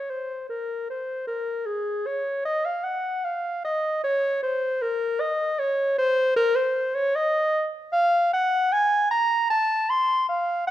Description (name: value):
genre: classical, baroque-style fantasia for unaccompanied clarinet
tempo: 77 BPM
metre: 3/4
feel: rubato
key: Db major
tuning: A4 = 439 Hz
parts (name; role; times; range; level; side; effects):
- mellow clarinet; solo; 0.0-10.7 s; Ab4 to C6; -22 LUFS; equal; none
room: moderate recital hall reverb, RT60 1.4 s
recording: none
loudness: -22 LUFS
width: side -13 dB against mid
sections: 0.0-10.7 A section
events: none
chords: none